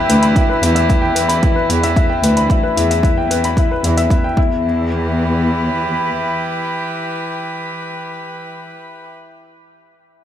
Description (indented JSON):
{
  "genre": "piano and strings electronica",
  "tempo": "112 BPM",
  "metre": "4/4",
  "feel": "straight",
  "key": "unclear",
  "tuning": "A4 = 440 Hz",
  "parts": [
    { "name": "rich string quartet", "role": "sustained chords", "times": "0.0-9.1 s", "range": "E3 to B4", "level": "-21 LUFS", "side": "right 2 dB", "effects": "sidechain pumping, low-pass filter" },
    { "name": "clear upright piano", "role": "riff", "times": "0.0-10.2 s", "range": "E4 to B5", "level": "-20 LUFS", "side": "left 4 dB", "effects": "tape echo" },
    { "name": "dark studio cello section", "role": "bass", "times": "0.1-6.2 s", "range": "D2 to E2", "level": "-18 LUFS", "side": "equal", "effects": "sidechain pumping" },
    { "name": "electronic hi-hat", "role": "drums", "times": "0.1-4.2 s", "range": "none", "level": "-24 LUFS", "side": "equal", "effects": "overdrive" },
    { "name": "electronic kick drum", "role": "drums", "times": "0.4-4.5 s", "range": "none", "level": "-15 LUFS", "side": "equal", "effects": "overdrive" }
  ],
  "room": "light reverb, studio reverb",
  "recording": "none",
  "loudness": "-14 LUFS",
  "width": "side -10 dB against mid",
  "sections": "0.0-4.6 A section; 4.6-8.9 B section",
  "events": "filter sweep on string quartet 0.0-4.6",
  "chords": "0.0 Em; 4.4 N.C.; 4.6 Em"
}